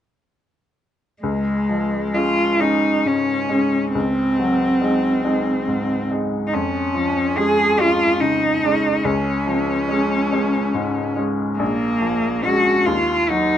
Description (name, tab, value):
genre	classical, romantic duo for cello and grand piano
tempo	47 BPM (dotted quarters)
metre	6/8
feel	rubato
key	Db major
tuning	A4 = 440 Hz
part	rich cello	melody	1.2-13.6 s	Ab3 to Ab4	-19 LUFS	equal	none
part	bright baby grand piano	accompaniment	1.2-13.6 s	Bb1 to Eb4	-21 LUFS	left 1 dB	none
room	light reverb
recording	nothing above 10.8 kHz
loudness	-17 LUFS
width	side -10 dB against mid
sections	1.2-13.6 A section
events	none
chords	1.2 Db; 3.9 Ab7/Db; 6.5 Db/F; 9.1 Db; 11.6 Bbm7; 12.9 Ebm